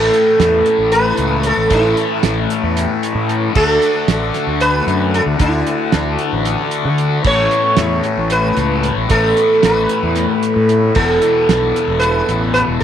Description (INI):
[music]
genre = psychedelic rock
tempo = 227 BPM (eighths)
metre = 7/8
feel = straight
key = unclear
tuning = A4 = 441 Hz
[part]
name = sitar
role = melody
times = 0.0-12.8 s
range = E4 to C#5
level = -16 LUFS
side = right 1 dB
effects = tape echo
[part]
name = combo organ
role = sustained chords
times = 0.0-12.8 s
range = B3 to B4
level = -25 LUFS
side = right 12 dB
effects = wide subtle chorus
[part]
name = fuzz guitar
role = riff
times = 0.0-12.8 s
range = E2 to D4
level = -19 LUFS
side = left 11 dB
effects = distortion, phaser
[part]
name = fuzz fingered electric bass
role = bass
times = 0.0-12.8 s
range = E1 to D3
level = -20 LUFS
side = equal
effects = overdrive
[part]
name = cloth-damped thuddy drum kit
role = drums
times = 0.1-12.7 s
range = crash cymbal, hi-hat, kick drum, snare drum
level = -20 LUFS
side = right 4 dB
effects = none
[sound]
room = moderate spring reverb, RT60 1.3 s, small room ambience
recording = 1960s-style stereo with parts hard left and right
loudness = -12 LUFS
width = side -9 dB against mid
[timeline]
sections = 0.0-12.8 A section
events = none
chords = 0.0 Aadd9; 3.6 D; 7.3 Aadd9; 11.0 Esus4